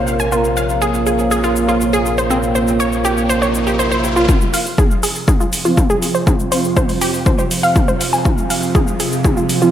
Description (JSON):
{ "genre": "melodic techno", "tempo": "121 BPM", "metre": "4/4", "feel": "straight", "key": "unclear", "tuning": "A4 = 439 Hz", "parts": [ { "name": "dark analog pad", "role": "sustained chords", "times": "0.0-9.7 s", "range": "Bb3 to F5", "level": "-22 LUFS", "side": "equal", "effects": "chorus, sidechain pumping" }, { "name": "analog synth brass", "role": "stabs", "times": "0.0-9.7 s", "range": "F3 to Bb4", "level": "-20 LUFS", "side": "right 3 dB", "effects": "chorus, sidechain pumping, diffuse ambient delay" }, { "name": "round analog bass", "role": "bass", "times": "0.0-4.3 s", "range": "Bb1", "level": "-23 LUFS", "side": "equal", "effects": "tube saturation, sidechain pumping" }, { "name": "bowed-like drone", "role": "drone", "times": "0.0-9.7 s", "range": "F2 to C3", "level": "-27 LUFS", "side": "right 1 dB", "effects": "built-in reverb, sidechain pumping" }, { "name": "techno drum kit", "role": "drums", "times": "0.1-9.7 s", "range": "hi-hat, shaker, toms", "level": "-22 LUFS", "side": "left 2 dB", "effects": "sidechain pumping on perc, small room ambience, sidechain pumping on toms, sidechain pumping on hats" }, { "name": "wide unison pluck", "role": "arpeggios", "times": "0.2-9.7 s", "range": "C4 to Ab5", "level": "-19 LUFS", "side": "equal", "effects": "sidechain pumping, diffuse ambient delay" }, { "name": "riser", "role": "sound effects", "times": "2.3-4.3 s", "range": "none", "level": "-27 LUFS", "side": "left 1 dB", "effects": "none" }, { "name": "electronic kick drum", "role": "drums", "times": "4.3-9.3 s", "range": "none", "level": "-15 LUFS", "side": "equal", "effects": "small room ambience" } ], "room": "moderate plate reverb, RT60 1.9 s", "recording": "dreamy mix soaked in reverb", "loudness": "-13 LUFS", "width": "side -10 dB against mid", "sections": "0.0-4.3 A section; 4.3-9.7 B section", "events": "filter sweep on analog synth pad 0.0-4.3; riser 2.3-4.3; build-up 4.3-9.7; drum fill 4.3-9.7; filter sweep on synth arpeggio sound 4.3-9.7", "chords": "0.0 Bbmadd9; 4.3 Fm" }